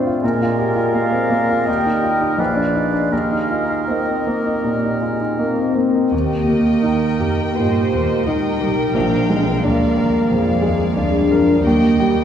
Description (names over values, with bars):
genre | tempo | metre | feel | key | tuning
classical, romantic movement for piano and orchestra | 78-90 BPM | 4/4 | rubato | Eb major | A4 = 436 Hz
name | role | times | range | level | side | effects
clear baby grand piano | melody | 0.0-12.2 s | Bb1 to Bb4 | -19 LUFS | equal | none
clear oboe | second line | 0.2-5.8 s | Bb4 to Cb5 | -26 LUFS | right 1 dB | none
mellow concert flute | second line | 0.2-5.4 s | D5 to G5 | -27 LUFS | left 1 dB | none
warm clarinet | second line | 0.2-5.7 s | Bb4 to F5 | -26 LUFS | left 1 dB | none
mellow bassoon | accompaniment | 0.2-6.1 s | G3 to C4 | -26 LUFS | right 2 dB | none
mellow French horn section | sustained chords | 5.4-12.2 s | Bb3 to G4 | -19 LUFS | left 1 dB | none
warm chamber violin section | melody | 6.1-12.2 s | D5 to G5 | -31 LUFS | left 3 dB | none
warm chamber violin section | second line | 6.1-12.2 s | Eb5 to G5 | -29 LUFS | left 3 dB | none
dark symphonic viola section | accompaniment | 6.1-12.2 s | G4 to C5 | -25 LUFS | right 1 dB | none
warm symphonic double bass section | bass | 6.1-12.2 s | Bb1 to G2 | -24 LUFS | right 1 dB | none
warm studio cello section | bass | 7.6-12.2 s | F3 to Bb3 | -25 LUFS | right 3 dB | none
room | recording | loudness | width
wet scoring stage reverb, RT60 1.6 s | heard from further back in the room | -15 LUFS | side -9 dB against mid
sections
0.0-6.1 A section; 6.1-12.2 B section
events
none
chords
0.2 Bb7; 1.7 Eb; 2.4 Bb7b9; 3.1 Eb; 8.9 Bb7b9; 11.6 Eb